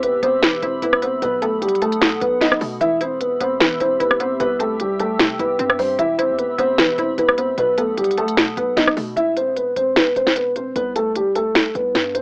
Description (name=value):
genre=hip hop, trap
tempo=151 BPM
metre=4/4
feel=half-time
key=E harmonic minor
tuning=A4 = 439 Hz
part: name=dark concert grand piano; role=melody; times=0.0-12.2 s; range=G3 to E5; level=-21 LUFS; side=equal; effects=low-pass filter, cassette tape
part: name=hollow square pluck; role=accompaniment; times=0.0-9.2 s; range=B2 to E4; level=-31 LUFS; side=equal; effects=chorus, low-pass filter, cassette tape
part: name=warbly tape-like pad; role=sustained chords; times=0.0-9.2 s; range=G4 to E6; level=-33 LUFS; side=equal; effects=chorus, built-in reverb, cassette tape
part: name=hard-hitting 808-style bass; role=bass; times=0.0-12.2 s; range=E1 to B2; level=-38 LUFS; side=equal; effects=none
part: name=trap drum kit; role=drums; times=0.0-12.2 s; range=finger snaps, hi-hat, rim click, snare drum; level=-20 LUFS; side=equal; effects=vintage 12-bit sampler grit, cassette tape
room=light reverb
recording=home recording on cassette, AM radio sound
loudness=-19 LUFS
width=mono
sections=0.0-9.2 A section; 9.2-12.2 B section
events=none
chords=0.0 Em; 1.2 B7; 2.8 Em; 4.4 C; 6.0 Em; 7.6 B7; 9.2 E5; 10.8 C5